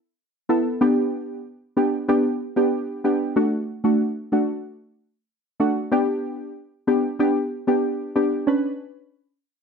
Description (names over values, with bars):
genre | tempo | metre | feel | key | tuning
dancehall | 94 BPM | 4/4 | straight | unclear | A4 = 443 Hz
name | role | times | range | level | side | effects
deep mellow chord stab | solo | 0.5-8.7 s | A3 to B4 | -20 LUFS | equal | chorus
room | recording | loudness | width
moderate small room reverb, RT60 0.5 s | dark, warm production | -20 LUFS | side -6 dB against mid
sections
0.0-8.5 A section; 8.5-9.6 B section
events
none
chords
0.0 Asus2; 0.8 G; 3.4 D; 5.9 G; 8.5 Bmadd9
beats
0.17 | 0.81 1.45 2.09 2.73 | 3.37 4.00 4.64 5.28 | 5.92 6.56 7.20 7.83 | 8.47